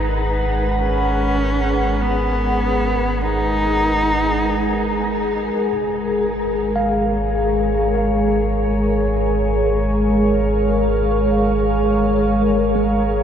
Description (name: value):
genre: ambient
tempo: 50 BPM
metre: 4/4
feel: straight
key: unclear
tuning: A4 = 442 Hz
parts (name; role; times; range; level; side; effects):
- rich cello; melody; 0.0-5.0 s; B3 to D#4; -23 LUFS; equal; diffuse ambient delay
- glassy FM pad; sustained chords; 0.0-13.2 s; G#3 to F#5; -18 LUFS; equal; ensemble chorus, built-in reverb
- warm sub bass; bass; 0.0-13.2 s; G#1; -23 LUFS; equal; none
- tine electric piano; arpeggios; 6.8-13.2 s; G#3 to E#5; -27 LUFS; equal; medium stereo tremolo, diffuse ambient delay
room: wet huge ambient reverb, RT60 8.2 s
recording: dark, warm production, lossy compression artefacts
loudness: -16 LUFS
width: side -8 dB against mid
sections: 0.0-13.2 A section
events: filter sweep on ambient pad 0.0-13.2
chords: 0.0 G#m7; 5.6 A#m7/G#